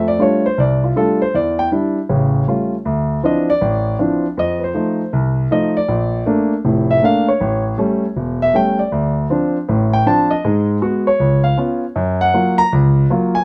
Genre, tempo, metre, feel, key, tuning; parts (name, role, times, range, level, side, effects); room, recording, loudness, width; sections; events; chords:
jazz; 158 BPM; 4/4; swing 64% on 8ths; A4 = 438 Hz
warm grand piano; solo; 0.0-13.4 s; E1 to Bb5; -16 LUFS; equal
moderate studio reverb, RT60 0.8 s; -16 LUFS; mono
0.0-2.9 A section; 2.9-13.4 B section
0.0 F69; 1.3 Em7; 2.1 A7b13; 2.9 Dm9; 4.4 F7; 5.9 Bbmaj7; 7.4 A7; 8.9 Dm7; 10.4 Abm7; 11.2 Db7; 12.0 Gbmaj7